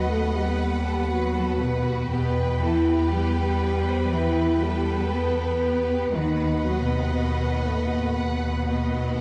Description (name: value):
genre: cinematic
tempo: 119 BPM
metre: 4/4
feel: straight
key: E harmonic minor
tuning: A4 = 440 Hz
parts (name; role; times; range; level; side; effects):
- warm symphonic violin section; melody; 0.0-9.2 s; F#4 to F#5; -39 LUFS; equal; none
- warm symphonic violin section; second line; 0.0-9.2 s; F#5 to B5; -36 LUFS; equal; none
- rich symphonic viola section; accompaniment; 0.0-9.2 s; B3 to B4; -33 LUFS; equal; none
- mellow French horn section; sustained chords; 0.0-9.2 s; A3 to B4; -30 LUFS; equal; none
- rich symphonic cello section; bass; 0.0-9.2 s; A2 to B3; -32 LUFS; equal; none
- rich symphonic double bass section; bass; 0.0-9.2 s; D#2 to E2; -29 LUFS; equal; none
- cymbal swell; sound effects; 9.0-9.2 s; none; -52 LUFS; equal; none
room: wet recital hall reverb, RT60 1.5 s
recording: dark, warm production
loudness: -24 LUFS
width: mono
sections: 0.0-9.2 A section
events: none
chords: 0.0 B/D#; 2.1 Em; 6.1 B/D#